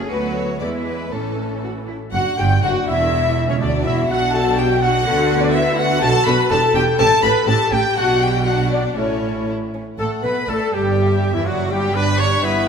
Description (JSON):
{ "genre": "quick classical-period movement for symphony orchestra", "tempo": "122 BPM", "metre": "2/4", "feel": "straight", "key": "B minor", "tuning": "A4 = 441 Hz", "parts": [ { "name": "warm chamber violin section", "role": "second line", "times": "0.0-12.7 s", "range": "B3 to C#6", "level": "-26 LUFS", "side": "left 4 dB", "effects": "none" }, { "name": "rich symphonic viola section", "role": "accompaniment", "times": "0.0-12.7 s", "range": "E3 to B4", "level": "-25 LUFS", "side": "right 1 dB", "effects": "none" }, { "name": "warm French horn section", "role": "sustained chords", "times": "0.0-12.7 s", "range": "E3 to B4", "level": "-24 LUFS", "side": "left 6 dB", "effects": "none" }, { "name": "clear chamber cello section", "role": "bass", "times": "0.0-12.7 s", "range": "C#2 to F#4", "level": "-25 LUFS", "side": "right 3 dB", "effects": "none" }, { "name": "rich chamber double bass section", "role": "bass", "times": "0.0-12.7 s", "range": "E1 to E2", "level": "-23 LUFS", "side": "right 4 dB", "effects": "none" }, { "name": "rich chamber violin section", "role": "melody", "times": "0.1-12.7 s", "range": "A4 to B5", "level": "-25 LUFS", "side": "left 5 dB", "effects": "none" }, { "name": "mellow hollow silver concert flute", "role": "second line", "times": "2.1-12.7 s", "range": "E4 to B5", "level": "-25 LUFS", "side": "left 1 dB", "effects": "none" }, { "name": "bright trumpet section", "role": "stabs", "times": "2.1-12.7 s", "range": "E4 to B5", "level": "-23 LUFS", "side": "right 1 dB", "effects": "none" }, { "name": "warm clarinet", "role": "second line", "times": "10.0-12.7 s", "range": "B3 to B4", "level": "-26 LUFS", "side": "left 1 dB", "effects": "none" } ], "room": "wet scoring stage reverb, RT60 2.0 s", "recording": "faint mains hum", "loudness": "-15 LUFS", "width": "side -6 dB against mid", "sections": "0.0-2.1 A section; 2.1-10.0 B section; 10.0-12.7 C section", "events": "none", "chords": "0.1 Bm7/D; 0.6 E; 1.1 A; 2.1 Em9; 3.1 F#5/E; 4.1 Bm; 5.1 Bm/D; 6.0 Bm; 6.5 Em; 7.0 A7; 8.0 Bm; 9.0 A; 10.0 F#madd11/A; 10.5 D5/A; 11.0 G5; 11.9 G" }